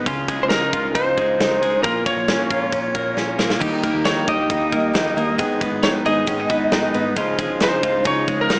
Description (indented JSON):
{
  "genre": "jangly indie pop",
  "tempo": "135 BPM",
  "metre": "4/4",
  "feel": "straight",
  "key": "unclear",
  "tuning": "A4 = 440 Hz",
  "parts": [
    { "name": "twelve-string electric guitar", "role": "arpeggios", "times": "0.0-8.6 s", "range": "Ab2 to Ab4", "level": "-26 LUFS", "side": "equal", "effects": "none" },
    { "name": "vintage muted picked electric bass", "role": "bass", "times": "0.0-8.6 s", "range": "Ab1 to Eb2", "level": "-38 LUFS", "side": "equal", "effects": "none" },
    { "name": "big rock drum kit", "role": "drums", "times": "0.1-8.6 s", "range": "crash cymbal, kick drum, ride cymbal, snare drum", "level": "-26 LUFS", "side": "equal", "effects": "vintage 12-bit sampler grit" },
    { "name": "lightly driven lead guitar", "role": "melody", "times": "0.4-8.6 s", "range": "Bb4 to Eb5", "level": "-24 LUFS", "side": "equal", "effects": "none" },
    { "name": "picked steel-string acoustic guitar", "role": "accompaniment", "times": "3.6-8.6 s", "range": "Ab2 to Eb4", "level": "-26 LUFS", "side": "equal", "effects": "none" }
  ],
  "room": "moderate small room reverb, RT60 0.5 s",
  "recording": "cassette tape, small speaker sound",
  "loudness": "-20 LUFS",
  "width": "mono",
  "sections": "0.0-8.6 A section",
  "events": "drum fill 3.2-3.6",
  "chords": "0.1 Dbadd9; 1.8 Bbm; 3.6 Eb; 5.4 Abm; 7.2 Dbadd9"
}